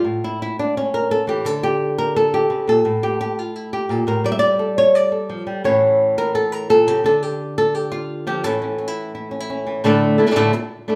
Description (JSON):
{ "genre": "flamenco", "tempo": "172 BPM", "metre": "4/4", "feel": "straight", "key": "A phrygian dominant", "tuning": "A4 = 439 Hz", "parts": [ { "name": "flamenco guitar", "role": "solo", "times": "0.0-11.0 s", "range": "A2 to E5", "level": "-19 LUFS", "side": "equal", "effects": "none" } ], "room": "moderate large studio reverb, RT60 1.0 s", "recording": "band playing live in one room", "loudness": "-19 LUFS", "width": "mono", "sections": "0.0-9.8 A section; 9.8-11.0 B section", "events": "none", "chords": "0.1 A; 1.5 D5; 2.9 Gm13/A; 4.2 Gsus2; 5.6 A; 7.0 Dm; 8.4 A; 9.8 Asus4", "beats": "| 0.05 0.40 0.75 1.10 | 1.45 1.80 2.15 2.50 | 2.85 3.20 3.55 3.90 | 4.25 4.60 4.95 5.30 | 5.65 6.00 6.34 6.69 | 7.04 7.39 7.74 8.09 | 8.44 8.79 9.14 9.49 | 9.84 10.19 10.54 10.89" }